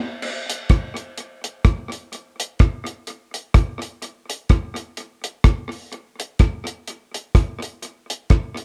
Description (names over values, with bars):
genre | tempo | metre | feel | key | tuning
ska | 126 BPM | 4/4 | swing 57% on 8ths | none | none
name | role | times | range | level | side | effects
deep reggae drum kit | drums | 0.2-8.6 s | crash cymbal, hi-hat, kick drum, rim click | -20 LUFS | equal | tape echo
room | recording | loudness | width
light reverb | dark, warm production | -21 LUFS | mono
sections
0.2-8.6 A section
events
band accent 0.0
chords
none